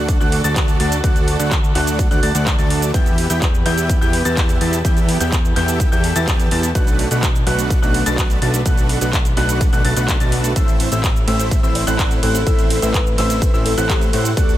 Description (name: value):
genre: EDM, festival progressive house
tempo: 126 BPM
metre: 4/4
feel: straight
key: unclear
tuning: A4 = 441 Hz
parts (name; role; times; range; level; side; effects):
- warm studio string section; sustained chords; 0.0-14.6 s; D3 to B4; -29 LUFS; right 1 dB; sidechain pumping
- warm grand piano; arpeggios; 0.0-14.6 s; E6 to A6; -26 LUFS; left 2 dB; sidechain pumping, digital delay
- dense compressed supersaw; riff; 0.0-14.6 s; A3 to A5; -22 LUFS; right 1 dB; sidechain pumping, digital delay
- fat analog bass; bass; 0.0-14.6 s; A1 to A2; -21 LUFS; equal; sidechain pumping
- electronic kick drum; drums; 0.1-14.5 s; none; -17 LUFS; equal; overdrive
- pop drum kit; drums; 0.1-14.6 s; cabasa, handclaps, hi-hat, ride cymbal; -24 LUFS; right 1 dB; none
- buzzing kalimba; melody; 11.8-14.3 s; G4 to D5; -24 LUFS; left 2 dB; digital delay
room: little or no reverb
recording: none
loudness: -14 LUFS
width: side -13 dB against mid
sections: 0.0-14.6 A section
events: none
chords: 0.0 D; 2.9 Em; 6.8 Bm7; 10.6 Am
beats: 0.09 0.56 | 1.04 1.51 1.99 2.47 | 2.94 3.42 3.90 4.37 | 4.85 5.32 5.80 6.28 | 6.75 7.23 7.71 8.18 | 8.66 9.13 9.61 10.09 | 10.56 11.04 11.51 11.99 | 12.47 12.94 13.42 13.89 | 14.37